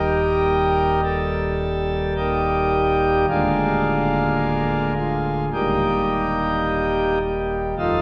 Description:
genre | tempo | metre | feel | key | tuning
classical, chorale-style piece for pipe organ | 53 BPM | 4/4 | rubato | unclear | A4 = 441 Hz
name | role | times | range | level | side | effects
pipe organ, principal chorus | solo | 0.0-8.0 s | D1 to Bb4 | -21 LUFS | equal | none
room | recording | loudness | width
wet cathedral reverb, RT60 4.2 s | recorded in a church or concert hall | -21 LUFS | mono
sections
0.0-8.0 A section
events
none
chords
0.0 Eb; 3.3 Bb7/D; 5.5 Eb

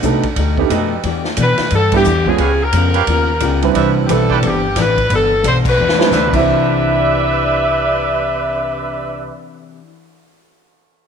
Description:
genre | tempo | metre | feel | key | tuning
jazz, big band swing | 177 BPM | 4/4 | swing 63% on 8ths | C major | A4 = 440 Hz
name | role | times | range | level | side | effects
clear grand piano | accompaniment | 0.0-9.4 s | C3 to Cb5 | -20 LUFS | right 12 dB | none
picked steel-string acoustic guitar | accompaniment | 0.0-9.9 s | B2 to G4 | -22 LUFS | left 11 dB | none
upright bass | bass | 0.0-9.3 s | G1 to B2 | -19 LUFS | equal | none
swinging big-band drum kit | drums | 0.0-6.4 s | crash cymbal, hi-hat, kick drum, ride cymbal, snare drum | -22 LUFS | equal | none
clear trumpet section | stabs | 0.7-9.3 s | G4 to G5 | -21 LUFS | right 8 dB | none
edgy saxophone section | melody | 1.4-9.3 s | D4 to E5 | -17 LUFS | left 2 dB | none
room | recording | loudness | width
moderate plate reverb, RT60 1.9 s, studio ambience | 1960s-style stereo with parts hard left and right | -12 LUFS | side -7 dB against mid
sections
0.0-6.5 A section; 6.5-9.2 B section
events
band accent 1.9, 5.6; drum fill 5.8-6.1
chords
0.0 B7alt; 1.0 Em7; 2.4 Db7#11; 3.7 Cmaj9

